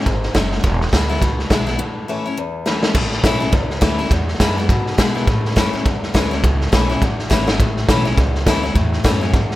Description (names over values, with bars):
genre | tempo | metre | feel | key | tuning
rockabilly | 207 BPM | 4/4 | swing 59% on 8ths | A major | A4 = 439 Hz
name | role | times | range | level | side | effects
picked steel-string acoustic guitar | accompaniment | 0.0-9.6 s | E2 to E4 | -22 LUFS | left 3 dB | none
raw garage drum kit | drums | 0.0-9.5 s | crash cymbal, hi-hat, kick drum, snare drum | -17 LUFS | equal | none
upright bass | bass | 0.1-9.6 s | E1 to B2 | -21 LUFS | equal | none
room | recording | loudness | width
little or no reverb | none | -15 LUFS | side -16 dB against mid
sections
0.0-2.9 A section; 2.9-9.6 B section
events
break 1.8-2.9; drum fill 2.7, 7.3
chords
0.0 N.C.; 0.6 E7; 1.8 A; 4.1 E7; 5.3 A